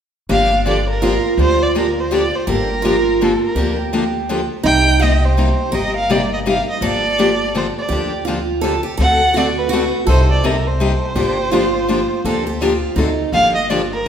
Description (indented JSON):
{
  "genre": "acoustic string swing (jazz manouche)",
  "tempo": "166 BPM",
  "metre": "3/4",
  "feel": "swing 60% on 8ths",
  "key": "G minor",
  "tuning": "A4 = 440 Hz",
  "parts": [
    { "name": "warm violin", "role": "melody", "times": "0.3-14.1 s", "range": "A4 to G5", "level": "-19 LUFS", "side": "right 1 dB", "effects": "none" },
    { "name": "picked steel-string acoustic guitar", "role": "second line", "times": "0.3-13.3 s", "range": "D4 to Bb4", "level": "-21 LUFS", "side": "right 4 dB", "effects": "none" },
    { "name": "picked steel-string acoustic guitar", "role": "accompaniment", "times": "0.3-14.1 s", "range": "C3 to A4", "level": "-19 LUFS", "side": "left 3 dB", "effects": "none" },
    { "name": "upright bass", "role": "bass", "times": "0.3-14.1 s", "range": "G1 to D2", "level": "-20 LUFS", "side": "equal", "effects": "none" }
  ],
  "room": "wet recital hall reverb, RT60 1.5 s",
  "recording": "recorded in a church or concert hall",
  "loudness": "-14 LUFS",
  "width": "side -8 dB against mid",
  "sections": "0.3-13.3 A section",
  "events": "none",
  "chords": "0.3 Gm7; 4.6 Cm7; 6.8 Gm7; 9.0 D7; 10.1 Cm7; 11.2 Gm7; 13.0 D7b9; 13.3 Gm7"
}